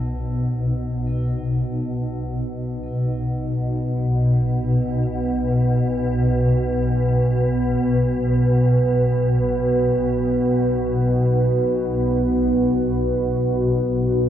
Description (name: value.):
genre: dark ambient drone.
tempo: free time.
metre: none.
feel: none.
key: unclear.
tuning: A4 = 442 Hz.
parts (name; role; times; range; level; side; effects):
deep dark ambient pad; sustained chords; 0.0-14.3 s; B3 to B4; -23 LUFS; right 1 dB; chorus, built-in reverb.
tubular bells; arpeggios; 0.0-1.1 s; A4; -52 LUFS; left 1 dB; tape echo.
swarming drone; drone; 0.0-14.3 s; B1 to B2; -20 LUFS; equal; built-in reverb.
room: wet cathedral reverb, RT60 7.0 s.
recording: none.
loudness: -18 LUFS.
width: side -10 dB against mid.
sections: 0.0-14.3 A section.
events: fade-in on ambient pad 0.0-14.3.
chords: 0.0 B5.